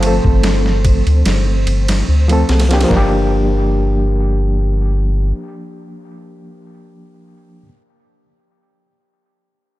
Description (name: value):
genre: trip hop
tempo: 73 BPM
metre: 4/4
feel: swing 53% on 16ths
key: G minor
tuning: A4 = 440 Hz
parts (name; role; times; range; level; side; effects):
- overdriven reed electric piano; accompaniment; 0.0-7.7 s; F3 to A4; -19 LUFS; equal; fast tremolo, harmonic tremolo, vintage 12-bit sampler grit, tape echo
- string machine, cellos; sustained chords; 0.0-2.9 s; C4 to C5; -27 LUFS; right 1 dB; ensemble chorus
- round analog bass; bass; 0.0-5.3 s; G1 to D2; -14 LUFS; equal; none
- boom bap sampler-style drum kit; drums; 0.0-3.1 s; kick drum, ride cymbal, snare drum; -18 LUFS; equal; overdrive
room: digital ambience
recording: none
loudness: -12 LUFS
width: side -16 dB against mid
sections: 0.0-2.9 A section; 2.9-6.2 B section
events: none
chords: 0.0 F/G; 2.9 Gm7